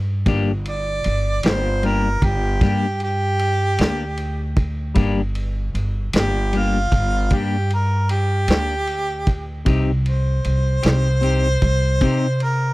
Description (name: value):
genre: slow blues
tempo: 51 BPM (dotted quarters)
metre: 12/8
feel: straight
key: G minor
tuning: A4 = 442 Hz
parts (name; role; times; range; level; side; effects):
- upright bass; bass; 0.0-12.7 s; G1 to C3; -20 LUFS; equal; none
- clean electric guitar; accompaniment; 0.3-12.3 s; C3 to G4; -22 LUFS; left 4 dB; harmonic tremolo
- vintage drum kit; drums; 0.3-12.6 s; kick drum, ride cymbal, snare drum; -21 LUFS; equal; none
- warm harmonica; melody; 0.7-12.7 s; F4 to D5; -23 LUFS; right 1 dB; none
room: little or no reverb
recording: dry, close 1970s-style studio recording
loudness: -17 LUFS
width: side -20 dB against mid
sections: 0.0-12.7 A section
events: harmonica solo 0.0-12.7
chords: 0.3 Gm; 9.7 Cm